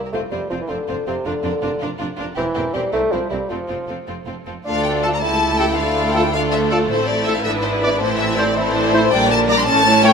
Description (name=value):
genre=quick classical-period movement for symphony orchestra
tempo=107 BPM (dotted quarters)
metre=6/8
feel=straight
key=F major, D minor from 4.7 s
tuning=A4 = 438 Hz
part: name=rich chamber violin section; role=melody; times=0.1-10.1 s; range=A4 to C6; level=-20 LUFS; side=left 4 dB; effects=none
part: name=rich chamber violin section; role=second line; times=0.1-10.1 s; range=C#4 to D5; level=-25 LUFS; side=left 2 dB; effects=none
part: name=mellow bassoon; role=accompaniment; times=0.1-10.1 s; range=C3 to E4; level=-23 LUFS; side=equal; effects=none
part: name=rich chamber viola section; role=accompaniment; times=0.1-10.1 s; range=D3 to E4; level=-26 LUFS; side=equal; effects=none
part: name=clear chamber double bass section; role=bass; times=0.1-10.1 s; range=E1 to D2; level=-28 LUFS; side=right 4 dB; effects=none
part: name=rich chamber cello section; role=bass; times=0.1-10.1 s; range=C2 to Bb2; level=-27 LUFS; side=right 7 dB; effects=none
part: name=mellow French horn section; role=sustained chords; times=5.0-10.1 s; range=A3 to G4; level=-25 LUFS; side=left 3 dB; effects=none
part: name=bright trumpet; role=stabs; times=5.0-10.1 s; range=A4 to D5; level=-25 LUFS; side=right 2 dB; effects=none
room=moderate scoring stage reverb, RT60 1.6 s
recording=none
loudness=-16 LUFS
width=side -6 dB against mid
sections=0.0-4.7 A section; 4.7-10.1 B section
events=none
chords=0.1 F5; 1.3 Bb/F; 2.4 C7/E; 2.9 C7; 3.5 F; 4.7 Dm; 5.2 A7/C#; 5.8 Dm; 6.9 Am; 7.5 E7/G#; 8.0 Am; 9.1 Gm/Bb